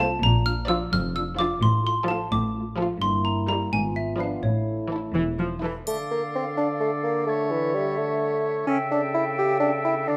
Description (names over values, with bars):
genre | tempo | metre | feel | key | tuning
cinematic, playful, whimsical film cue | 86 BPM (dotted quarters) | 6/8 | straight | unclear | A4 = 438 Hz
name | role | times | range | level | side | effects
rich chamber violin section | melody | 0.0-5.8 s | A4 to D5 | -40 LUFS | equal | none
xylophone with rubber mallets | melody | 0.0-5.6 s | C#5 to F6 | -29 LUFS | equal | none
dark chamber violin section | second line | 0.0-5.8 s | D4 to F4 | -35 LUFS | equal | none
rich chamber viola section | accompaniment | 0.0-5.7 s | E3 to A3 | -32 LUFS | equal | none
mellow French horn section | sustained chords | 0.0-10.2 s | C#3 to F4 | -35 LUFS | equal | none
rich chamber cello section | bass | 0.0-5.7 s | E2 to Bb2 | -33 LUFS | equal | none
rich chamber double bass section | bass | 0.0-5.7 s | E1 to Bb1 | -30 LUFS | equal | none
bright clarinet | second line | 5.9-10.2 s | A4 | -36 LUFS | equal | none
clear oboe | second line | 5.9-10.2 s | C#5 to E5 | -33 LUFS | equal | none
hollow flute section | second line | 5.9-10.2 s | E5 to G5 | -36 LUFS | equal | none
mellow bassoon | accompaniment | 5.9-10.2 s | E3 to G4 | -27 LUFS | equal | none
triangle | percussion | 5.9-6.8 s | none | -43 LUFS | equal | none
room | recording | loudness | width
moderate recital hall reverb, RT60 1.4 s | none | -25 LUFS | mono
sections
0.0-5.9 A section; 5.9-10.2 B section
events
none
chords
0.2 Bb; 1.6 F/A; 3.0 Edim/G; 3.7 G#dim7; 4.4 A; 5.9 Dm; 7.3 A/D; 8.7 A7/C#